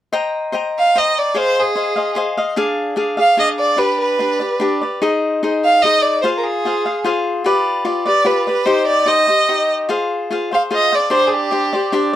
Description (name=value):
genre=mexican folk, mariachi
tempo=148 BPM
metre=3/4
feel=straight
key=C minor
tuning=A4 = 440 Hz
part: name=cavaquinho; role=accompaniment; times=0.1-12.2 s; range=D4 to Bb5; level=-18 LUFS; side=left 2 dB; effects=none
part: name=clear violin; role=melody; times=0.8-11.9 s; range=G4 to F5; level=-15 LUFS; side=right 2 dB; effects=none
room=light reverb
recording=dry, close 1970s-style studio recording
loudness=-14 LUFS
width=side -12 dB against mid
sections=0.1-12.2 A section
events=none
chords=0.1 Cm7; 1.4 Fm7; 2.6 Ddim; 3.8 G; 5.0 Ab; 6.2 Fm; 7.5 G7; 8.7 Cm; 9.9 Fm; 11.1 Gsus4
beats=| 0.14 0.54 0.95 | 1.36 1.76 2.17 | 2.57 2.97 3.38 | 3.79 4.19 4.61 | 5.02 5.43 5.84 | 6.24 6.65 7.05 | 7.46 7.86 8.27 | 8.67 9.08 9.49 | 9.90 10.31 10.71 | 11.12 11.52 11.93